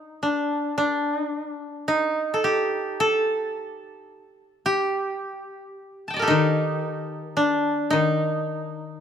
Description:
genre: japanese traditional, Japanese chamber music.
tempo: 54 BPM.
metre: 4/4.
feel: rubato.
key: unclear.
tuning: A4 = 439 Hz.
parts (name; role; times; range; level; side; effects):
koto; melody; 0.0-9.0 s; D4 to A5; -23 LUFS; right 1 dB; none.
koto; accompaniment; 6.3-9.0 s; Eb3; -26 LUFS; left 7 dB; none.
room: light reverb.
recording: close, detailed microphones.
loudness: -22 LUFS.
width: side -8 dB against mid.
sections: 0.0-9.0 A section.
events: none.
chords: none.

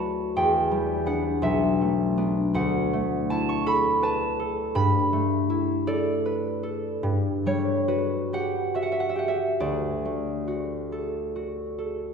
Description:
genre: classical, solo harp piece.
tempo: 45-56 BPM (dotted quarters).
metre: 6/8.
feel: rubato.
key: D major.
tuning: A4 = 440 Hz.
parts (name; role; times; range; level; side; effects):
concert harp; solo; 0.0-12.1 s; B1 to C#6; -23 LUFS; equal; none.
room: wet concert hall reverb, RT60 1.7 s.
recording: heard from further back in the room.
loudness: -23 LUFS.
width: side -6 dB against mid.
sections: 0.0-12.1 A section.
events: none.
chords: 0.3 Em7; 1.4 Bm7; 2.5 D69; 4.7 G69; 7.0 Gmaj7; 9.6 D.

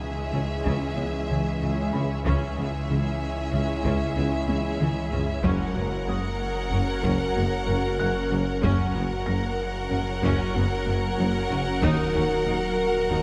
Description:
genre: cinematic, hybrid orchestral and electronic film score.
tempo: 94 BPM.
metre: 5/4.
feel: straight.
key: unclear.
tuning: A4 = 440 Hz.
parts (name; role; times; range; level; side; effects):
warm symphonic violin section; melody; 0.0-13.2 s; E5 to F#5; -36 LUFS; equal; none.
rich symphonic violin section; second line; 0.0-13.2 s; G#4 to A#4; -36 LUFS; equal; none.
dark French horn section; sustained chords; 0.0-13.2 s; E3 to A#4; -35 LUFS; equal; none.
granular cloud pad; sustained chords; 0.0-13.2 s; E3 to C#5; -37 LUFS; equal; built-in reverb.
snarling distorted saw bass; bass; 0.0-13.2 s; D#1 to C#2; -35 LUFS; equal; distortion.
felt-muted upright piano; texture; 0.0-11.9 s; G#5 to A#6; -45 LUFS; equal; none.
rich symphonic viola section; accompaniment; 0.3-13.2 s; G#3 to D#4; -38 LUFS; equal; none.
thumb-piano-like synth pluck; arpeggios; 0.3-13.2 s; C#3 to F#4; -37 LUFS; equal; none.
mellow tuba; bass; 0.3-13.2 s; F#1 to D#2; -35 LUFS; equal; none.
rich symphonic double bass section; bass; 0.3-13.2 s; F#1 to D#2; -35 LUFS; equal; none.
warm symphonic cello section; bass; 0.3-13.2 s; D#2 to C#3; -32 LUFS; equal; none.
taiko ensemble; drums; 0.7-12.4 s; none; -35 LUFS; equal; none.
room: moderate scoring stage reverb, RT60 1.9 s.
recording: none.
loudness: -25 LUFS.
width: mono.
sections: 0.0-13.2 A section.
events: drum fill 4.5-5.4.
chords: 0.0 C#m; 5.4 F#; 11.8 D#m.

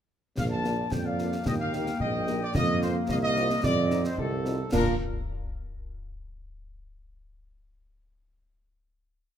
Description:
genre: military-style march for wind band.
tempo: 110 BPM.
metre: 2/4.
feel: straight.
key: Bb major.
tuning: A4 = 440 Hz.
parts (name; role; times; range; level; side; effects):
clear trumpet section; melody; 0.4-5.0 s; A4 to A5; -30 LUFS; equal; none.
mellow woodwind section; second line; 0.4-5.0 s; Bb3 to G5; -33 LUFS; left 3 dB; none.
warm tuba; bass; 0.4-5.0 s; Bb1 to Bb2; -29 LUFS; right 4 dB; none.
concert snare drum, clash cymbals and concert bass drum; drums; 0.4-5.0 s; none; -32 LUFS; left 1 dB; none.
dark French horn section; accompaniment; 0.6-4.9 s; Bb3 to G4; -36 LUFS; left 4 dB; none.
room: light reverb.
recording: none.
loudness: -25 LUFS.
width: side -9 dB against mid.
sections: 0.4-4.7 A section; 4.7-5.8 final chord.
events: none.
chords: 0.4 Bb; 1.5 Eb; 2.5 Fsus4; 3.6 F7; 4.7 Bb.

